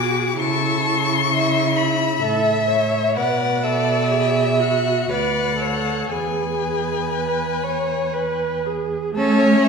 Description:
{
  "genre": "classical, slow romantic movement for string quartet",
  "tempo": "58-66 BPM",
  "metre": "3/4",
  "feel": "rubato",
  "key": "A major",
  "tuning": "A4 = 436 Hz",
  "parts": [
    { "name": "rich violin", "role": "melody", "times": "0.0-9.7 s", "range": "C#5 to D6", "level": "-24 LUFS", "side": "left 6 dB", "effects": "none" },
    { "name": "rich violin", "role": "second line", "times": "0.0-9.7 s", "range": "G#4 to F#5", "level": "-24 LUFS", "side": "equal", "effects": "none" },
    { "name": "warm viola", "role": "accompaniment", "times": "0.0-9.7 s", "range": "A3 to C#5", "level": "-23 LUFS", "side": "right 1 dB", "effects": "none" },
    { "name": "rich cello", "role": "bass", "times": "0.0-9.7 s", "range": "D2 to C#4", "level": "-23 LUFS", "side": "right 3 dB", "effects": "none" }
  ],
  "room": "wet concert hall reverb, RT60 2.0 s",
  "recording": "recorded in a church or concert hall",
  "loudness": "-18 LUFS",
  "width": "side -5 dB against mid",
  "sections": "0.0-9.2 A section",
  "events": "none",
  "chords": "0.4 A/C#; 3.2 Bm7; 5.1 Bm/D; 6.1 E; 9.2 A"
}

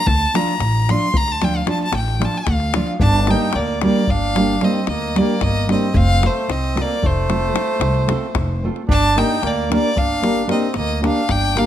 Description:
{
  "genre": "balkan folk, Balkan wedding band",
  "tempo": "224 BPM (eighths)",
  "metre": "11/8",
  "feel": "straight",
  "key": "G minor",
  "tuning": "A4 = 442 Hz",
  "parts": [
    { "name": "clear fiddle", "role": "melody", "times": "0.0-11.7 s", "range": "C5 to C6", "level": "-22 LUFS", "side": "left 2 dB", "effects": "none" },
    { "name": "upright bass", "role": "bass", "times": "0.1-11.6 s", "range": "F1 to D2", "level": "-20 LUFS", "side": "equal", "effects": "none" },
    { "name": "davul", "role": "percussion", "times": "0.1-11.7 s", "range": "none", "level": "-24 LUFS", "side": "left 2 dB", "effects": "none" },
    { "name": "nylon-string guitar", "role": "accompaniment", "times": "0.3-11.7 s", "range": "F3 to Bb4", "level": "-21 LUFS", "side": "right 1 dB", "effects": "none" },
    { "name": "dark trumpet", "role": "second line", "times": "3.0-11.7 s", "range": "A3 to Eb4", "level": "-24 LUFS", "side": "right 6 dB", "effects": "none" }
  ],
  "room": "light reverb",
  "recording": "close, detailed microphones",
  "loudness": "-16 LUFS",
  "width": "side -11 dB against mid",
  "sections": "0.0-3.0 A section; 3.0-11.7 B section",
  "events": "fiddle solo 0.0-3.0",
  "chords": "0.1 Dm; 3.0 Gm; 5.9 F; 8.9 Gm"
}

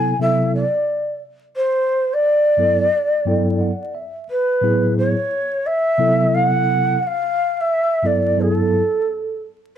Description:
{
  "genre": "hip hop",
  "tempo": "88 BPM",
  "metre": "4/4",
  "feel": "swing 65% on 16ths",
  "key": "unclear",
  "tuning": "A4 = 440 Hz",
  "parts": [
    { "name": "mellow hollow shakuhachi", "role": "melody", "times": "0.0-9.4 s", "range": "A4 to G#5", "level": "-17 LUFS", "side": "equal", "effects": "none" },
    { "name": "mellow tine electric piano", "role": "accompaniment", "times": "0.0-8.8 s", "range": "G2 to G5", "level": "-19 LUFS", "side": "equal", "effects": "medium stereo tremolo" }
  ],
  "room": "moderate studio reverb, RT60 0.6 s",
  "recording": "dark, warm production, vinyl crackle",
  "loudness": "-16 LUFS",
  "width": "side -9 dB against mid",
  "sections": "0.0-9.8 A section",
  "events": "tine electric piano fill 2.9-4.3",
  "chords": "0.2 Cmaj9; 1.6 Gmaj13; 4.3 Amaj9; 5.7 Cmaj7; 7.0 Gmaj9"
}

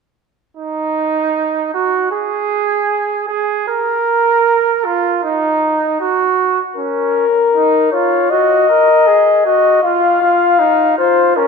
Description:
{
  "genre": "classical, imitative canzona for brass ensemble",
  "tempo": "78 BPM",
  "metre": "4/4",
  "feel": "straight",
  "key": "unclear",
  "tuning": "A4 = 440 Hz",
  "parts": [
    { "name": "mellow trumpet", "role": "second line", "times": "0.6-11.5 s", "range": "Db4 to Bb4", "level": "-15 LUFS", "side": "right 5 dB", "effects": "none" },
    { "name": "mellow cornet", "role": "melody", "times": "6.8-11.5 s", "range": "Bb4 to F5", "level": "-12 LUFS", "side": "left 6 dB", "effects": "none" }
  ],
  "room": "wet concert hall reverb, RT60 1.9 s",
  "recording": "dark, warm production",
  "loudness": "-12 LUFS",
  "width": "side -5 dB against mid",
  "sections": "0.6-11.5 A section",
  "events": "none",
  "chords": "0.6 N.C.; 6.8 Bbm/Db; 8.3 Ebm/Gb; 9.8 F5"
}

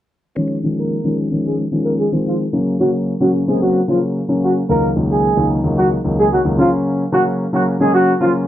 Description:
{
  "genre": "pop",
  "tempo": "111 BPM",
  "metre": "4/4",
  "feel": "straight",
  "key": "Db major",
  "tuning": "A4 = 440 Hz",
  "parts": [
    { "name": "mellow horn section", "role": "melody", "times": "0.4-8.3 s", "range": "F3 to Db5", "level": "-17 LUFS", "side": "right 1 dB", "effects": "low-pass filter, slapback echo" },
    { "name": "dark grand piano", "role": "accompaniment", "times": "0.4-8.5 s", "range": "Db2 to Eb4", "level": "-16 LUFS", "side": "left 1 dB", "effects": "low-pass filter" }
  ],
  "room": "little or no reverb",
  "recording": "dry, close 1970s-style studio recording",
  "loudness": "-14 LUFS",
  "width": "side -12 dB against mid",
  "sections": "0.4-8.5 A section",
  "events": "filter sweep 0.4-8.5",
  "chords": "0.4 Dbadd9; 2.5 Gb/Db; 4.7 Ebm/Db; 6.6 Gb/Db"
}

